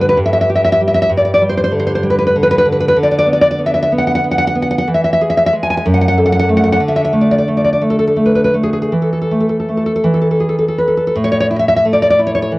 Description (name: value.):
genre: romantic piece for solo classical guitar.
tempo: 51-66 BPM (dotted quarters).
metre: 6/8.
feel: rubato.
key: unclear.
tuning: A4 = 439 Hz.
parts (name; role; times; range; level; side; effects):
nylon-string guitar; solo; 0.0-12.6 s; F#2 to G#5; -11 LUFS; equal; none.
room: moderate spring reverb, RT60 2.2 s.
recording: worn, warbling old tape, cassette tape, warbly pitch drift.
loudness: -11 LUFS.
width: side -20 dB against mid.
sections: 0.0-11.2 A section; 11.2-12.6 B section.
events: none.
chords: 0.2 N.C.; 1.1 G5; 3.0 Bm/D; 4.9 E; 5.8 F#m; 6.8 D5; 8.9 A5/E; 10.1 E; 11.2 A5.